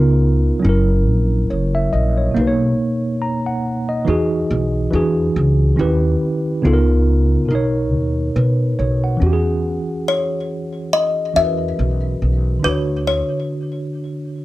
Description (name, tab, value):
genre	lo-fi hip hop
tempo	70 BPM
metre	4/4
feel	swing 58% on 16ths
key	unclear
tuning	A4 = 440 Hz
part	kalimba	melody	0.0-0.2, 10.1-14.4 s	B4 to E5	-19 LUFS	left 3 dB	none
part	mellow tine electric piano	accompaniment	0.0-14.4 s	B2 to A#5	-19 LUFS	right 1 dB	medium stereo tremolo, cassette tape
part	upright bass	bass	0.0-13.2 s	F#1 to B2	-17 LUFS	equal	none
room	light reverb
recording	cassette tape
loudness	-15 LUFS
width	side -17 dB against mid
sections	0.0-9.2 A section; 9.2-14.4 B section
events	none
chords	0.0 C#13; 0.6 F#7; 2.4 Bmaj9; 4.1 Emaj9; 4.9 E9; 5.8 D#7b9b13; 6.6 C#13; 7.5 Bmaj9; 9.2 E69; 12.6 Dmaj7